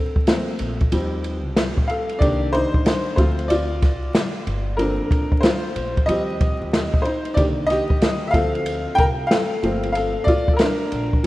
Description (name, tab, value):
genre	hip hop, jazz-hop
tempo	93 BPM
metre	4/4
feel	swing 64% on 16ths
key	unclear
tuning	A4 = 440 Hz
part	clear upright piano	accompaniment	0.0-11.3 s	D3 to G5	-21 LUFS	left 1 dB	none
part	open jazz drum kit	drums	0.2-11.3 s	hi-hat, kick drum, ride cymbal, snare drum	-20 LUFS	equal	none
part	upright bass	bass	0.6-11.2 s	G1 to Eb2	-27 LUFS	equal	none
room	moderate lush hall reverb, RT60 2.8 s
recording	rough home demo mix, vinyl crackle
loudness	-18 LUFS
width	side -17 dB against mid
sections	0.0-11.3 A section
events	upright piano solo 0.0-11.3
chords	0.0 Gm11 (rootless); 0.9 Eb69; 2.2 Cm7; 3.2 Dm7; 4.5 Gm11; 6.1 Eb69; 7.4 Cm7; 8.3 Dm7; 9.6 Gm11